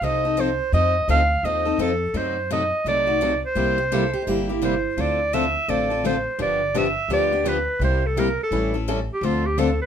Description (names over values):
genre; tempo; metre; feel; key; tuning
acoustic string swing (jazz manouche); 170 BPM; 4/4; swing 62% on 8ths; unclear; A4 = 440 Hz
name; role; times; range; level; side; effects
bright clarinet; melody; 0.0-9.9 s; F4 to F5; -22 LUFS; right 2 dB; none
picked plugged-in steel-string acoustic guitar; accompaniment; 0.0-9.7 s; C3 to A4; -30 LUFS; right 2 dB; none
picked steel-string acoustic guitar; accompaniment; 0.0-9.7 s; C3 to A4; -25 LUFS; left 6 dB; none
upright bass; bass; 0.0-9.8 s; G1 to F#2; -26 LUFS; equal; none
picked steel-string acoustic guitar; second line; 3.8-4.6 s; Eb4 to A4; -29 LUFS; right 9 dB; none
room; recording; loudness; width
moderate studio ambience, RT60 0.5 s; minimal, uncompressed stereo recording; -19 LUFS; side -8 dB against mid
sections
0.0-9.9 A section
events
none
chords
0.0 F7; 2.1 F#dim7; 3.6 C7; 5.0 Dm7; 6.4 G7; 7.8 C7; 8.5 A7; 9.2 Dm7